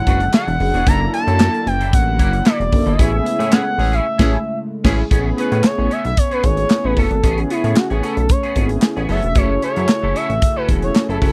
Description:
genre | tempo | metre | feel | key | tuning
early-eighties boogie funk | 113 BPM | 4/4 | straight | A major | A4 = 442 Hz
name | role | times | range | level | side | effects
expressive portamento lead | melody | 0.0-11.3 s | E4 to A#5 | -23 LUFS | equal | chorus, slapback echo
chorused pulse-width pad | sustained chords | 0.0-11.3 s | C#3 to G#5 | -30 LUFS | equal | none
chorused synth bass | bass | 0.0-11.3 s | E1 to A2 | -22 LUFS | equal | none
clean electric guitar | riff | 0.1-11.3 s | A#3 to B4 | -30 LUFS | equal | ensemble chorus
modern studio drum kit | drums | 0.1-11.3 s | crash cymbal, handclaps, hi-hat, kick drum, snare drum | -18 LUFS | equal | none
mellow synth brass | accompaniment | 0.6-11.3 s | A3 to A4 | -26 LUFS | equal | chorus
clear horn section | second line | 3.5-5.0 s | E3 to G#4 | -28 LUFS | equal | none
room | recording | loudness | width
light reverb | dry, close 1970s-style studio recording | -17 LUFS | mono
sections
0.0-5.1 A section; 5.1-11.3 B section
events
band accent 3.0-5.1; analog synth lead solo 5.1-11.3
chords
0.0 E9; 0.9 F#7alt; 3.0 Amaj7; 5.1 Amaj9

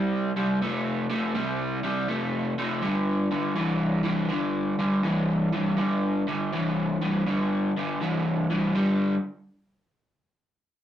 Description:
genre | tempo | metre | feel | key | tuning
rock | 81 BPM | 4/4 | swing 66% on 8ths | unclear | A4 = 440 Hz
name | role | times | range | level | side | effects
crunchy overdriven guitar | solo | 0.0-9.1 s | G2 to A3 | -24 LUFS | equal | none
room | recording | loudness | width
wet small room reverb, RT60 0.5 s | rough rehearsal-room recording, tube saturation | -24 LUFS | side -11 dB against mid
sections
0.0-8.7 A section; 8.7-10.8 B section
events
none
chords
0.0 C5; 2.8 G5

